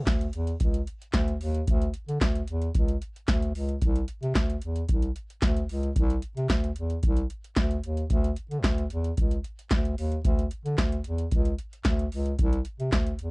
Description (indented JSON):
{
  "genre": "early-eighties boogie funk",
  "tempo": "112 BPM",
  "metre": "4/4",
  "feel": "straight",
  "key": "unclear",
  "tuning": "A4 = 439 Hz",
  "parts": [
    { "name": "dark bass clarinet", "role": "bass", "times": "0.0-13.3 s", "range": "C2 to D3", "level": "-28 LUFS", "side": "equal", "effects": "none" },
    { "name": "electro analog drum machine", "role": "drums", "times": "0.1-13.3 s", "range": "handclaps, hi-hat, kick drum, snare drum", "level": "-26 LUFS", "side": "equal", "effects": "none" }
  ],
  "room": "little or no reverb",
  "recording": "dry, close 1970s-style studio recording",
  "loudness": "-25 LUFS",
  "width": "side -27 dB against mid",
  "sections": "0.0-13.3 A section",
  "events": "none",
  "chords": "none"
}